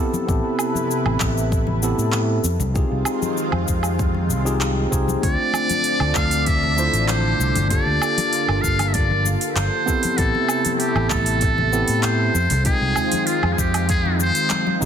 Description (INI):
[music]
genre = sunset chillout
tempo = 97 BPM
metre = 4/4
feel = straight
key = unclear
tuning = A4 = 440 Hz
[part]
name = tine electric piano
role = accompaniment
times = 0.0-14.9 s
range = Ab3 to G5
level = -25 LUFS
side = equal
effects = auto-pan, digital delay
[part]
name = lush unison pad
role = sustained chords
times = 0.0-14.9 s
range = C3 to D5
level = -27 LUFS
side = equal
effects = chorus, phaser
[part]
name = smooth R&B drum kit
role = drums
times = 0.1-14.9 s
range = cabasa, handclaps, hi-hat, toms, woodblock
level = -26 LUFS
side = right 1 dB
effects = overdrive, small room ambience
[part]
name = congas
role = percussion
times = 0.1-14.8 s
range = none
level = -31 LUFS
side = left 5 dB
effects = none
[part]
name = fingered electric bass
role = bass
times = 0.3-14.9 s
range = G1 to A2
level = -22 LUFS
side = equal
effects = tube saturation
[part]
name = electronic kick drum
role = drums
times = 0.3-14.9 s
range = none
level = -23 LUFS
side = equal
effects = small room ambience
[part]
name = trumpet with metal mute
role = melody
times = 5.2-14.8 s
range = F4 to F5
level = -22 LUFS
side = equal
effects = ping-pong delay
[sound]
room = light reverb, digital ambience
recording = dense, heavily limited modern master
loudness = -17 LUFS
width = side -8 dB against mid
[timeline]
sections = 0.0-14.9 A section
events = drum fill 14.5-14.9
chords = 0.0 Am9; 2.4 Fm9; 5.2 Dm9; 7.7 Gm9; 9.9 Am9; 12.3 Fm9